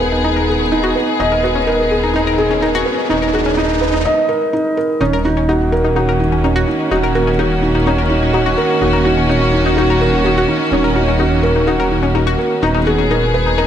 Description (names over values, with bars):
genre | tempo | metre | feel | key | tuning
piano and strings electronica | 126 BPM | 4/4 | straight | Eb minor | A4 = 443 Hz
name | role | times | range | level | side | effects
dark chamber string section | sustained chords | 0.0-13.7 s | Eb3 to Ab4 | -18 LUFS | equal | none
felt-muted upright piano | riff | 0.0-13.7 s | Db4 to Eb5 | -16 LUFS | right 2 dB | digital delay
dark detuned saw bass | bass | 0.0-13.7 s | Eb1 | -19 LUFS | equal | none
riser | sound effects | 0.4-4.0 s | none | -25 LUFS | right 1 dB | none
analog pluck | arpeggios | 0.1-13.6 s | Db4 to Bb4 | -21 LUFS | left 5 dB | chorus, digital delay
room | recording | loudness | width
moderate scoring stage reverb, RT60 1.7 s, small room ambience | none | -12 LUFS | side -9 dB against mid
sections
0.0-5.0 A section; 5.0-13.7 B section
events
build-up 0.0-5.0; riser 0.4-4.1; drop 5.0-13.7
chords
0.0 Abmadd9/Eb; 5.0 Ebm7; 12.6 Abmadd9/Eb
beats
0.24 0.72 | 1.20 1.67 2.15 2.62 | 3.10 3.58 4.05 4.53 | 5.00 5.48 5.96 6.43 | 6.91 7.39 7.86 8.34 | 8.81 9.29 9.77 10.24 | 10.72 11.20 11.67 12.15 | 12.62 13.10 13.58